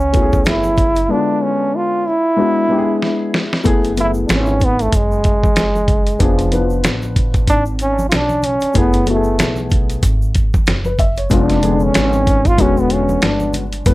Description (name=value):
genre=hip hop, jazz-hop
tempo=94 BPM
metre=4/4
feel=swing 58% on 16ths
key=F# minor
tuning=A4 = 441 Hz
part: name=warm trombone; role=melody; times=0.0-13.6 s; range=F3 to F4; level=-18 LUFS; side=right 1 dB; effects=analog delay
part: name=upright bass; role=bass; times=0.0-13.9 s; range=E1 to C#2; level=-20 LUFS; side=equal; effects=none
part: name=egg shaker and congas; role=percussion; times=0.0-13.9 s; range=none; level=-30 LUFS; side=right 2 dB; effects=none
part: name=dark concert grand piano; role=accompaniment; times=0.1-13.9 s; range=D3 to E5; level=-19 LUFS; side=left 4 dB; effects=none
part: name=dusty soul sampler-style drum kit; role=drums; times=0.1-13.9 s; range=hi-hat, kick drum, snare drum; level=-16 LUFS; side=equal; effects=none
room=light reverb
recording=none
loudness=-13 LUFS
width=side -18 dB against mid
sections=0.0-3.7 A section; 3.7-13.9 B section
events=drums muted 1.1-3.7; drum fill 3.0-3.7; trombone solo 3.7-13.9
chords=0.0 F#m11; 1.1 Ddim7; 2.4 E7; 3.7 F#m11; 6.2 Fdim7; 8.8 F#m11; 11.3 C#7b9/E#; 12.6 E7